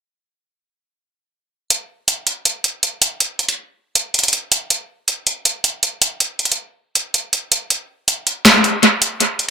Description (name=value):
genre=hip hop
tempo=160 BPM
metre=4/4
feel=half-time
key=none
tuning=none
part: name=booming analog drum machine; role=drums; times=1.7-9.5 s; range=handclaps, hi-hat, snare drum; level=-13 LUFS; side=equal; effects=analog delay
room=moderate spring reverb, RT60 1.4 s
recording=echo-heavy mix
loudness=-15 LUFS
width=side -7 dB against mid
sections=1.7-9.5 A section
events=kick muted 1.7-7.7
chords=none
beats=| 1.70 2.08 2.45 2.83 | 3.20 3.58 3.95 4.33 | 4.70 5.08 5.45 5.83 | 6.20 6.58 6.95 7.33 | 7.70 8.08 8.45 8.83 | 9.20